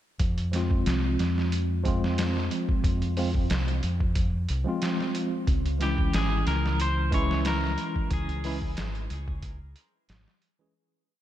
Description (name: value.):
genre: trip hop.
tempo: 91 BPM.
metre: 4/4.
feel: swing 54% on 16ths.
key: F harmonic minor.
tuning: A4 = 441 Hz.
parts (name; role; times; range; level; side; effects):
deep dub fingered electric bass; bass; 0.2-10.2 s; Ab1 to F2; -28 LUFS; equal; none.
trip hop sampler-style drum kit; drums; 0.2-10.6 s; hi-hat, kick drum, snare drum; -30 LUFS; equal; none.
bright tine electric piano; accompaniment; 0.5-10.7 s; Fb3 to Ab4; -30 LUFS; equal; medium stereo tremolo, harmonic tremolo, tape echo.
clean electric guitar; melody; 5.8-10.1 s; G4 to Db5; -32 LUFS; equal; wide subtle chorus, tape echo.
room: moderate lush hall reverb, RT60 2.3 s.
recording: dreamy mix soaked in reverb.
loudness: -24 LUFS.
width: side -12 dB against mid.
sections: 0.2-10.7 groove.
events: fade-out 7.2-10.7.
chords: 0.2 Fm; 5.5 Dbm.